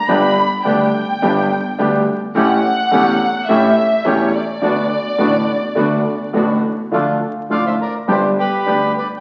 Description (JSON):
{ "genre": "tango", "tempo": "105 BPM", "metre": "4/4", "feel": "rubato", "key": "D major", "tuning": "A4 = 442 Hz", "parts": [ { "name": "warm studio violin section", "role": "second line", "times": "0.0-6.4 s", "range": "C#5 to B5", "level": "-21 LUFS", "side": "equal", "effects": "none" }, { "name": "warm grand piano", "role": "accompaniment", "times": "0.1-8.9 s", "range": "E1 to G4", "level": "-19 LUFS", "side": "equal", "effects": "none" }, { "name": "bandoneon", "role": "stabs", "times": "0.1-8.9 s", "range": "A3 to G4", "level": "-25 LUFS", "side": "equal", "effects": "none" }, { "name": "upright bass", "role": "bass", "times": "0.1-8.9 s", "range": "E1 to D2", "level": "-34 LUFS", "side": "equal", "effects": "none" }, { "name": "bandoneon", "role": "melody", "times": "7.5-9.2 s", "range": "G4 to G5", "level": "-21 LUFS", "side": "equal", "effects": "none" } ], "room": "wet large studio reverb, RT60 1.3 s", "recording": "very old 78 rpm record, vinyl crackle, nothing above 7.9 kHz", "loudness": "-16 LUFS", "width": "mono", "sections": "0.0-6.9 A section; 6.9-9.2 B section", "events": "violin section solo 0.0-6.9", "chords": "0.1 G; 2.4 A7; 4.6 D6; 6.9 Dm; 8.1 G", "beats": "| 0.08 0.65 1.22 1.79 | 2.36 2.92 3.49 4.06 | 4.62 5.19 5.77 6.35 | 6.94 7.51 8.09 8.67" }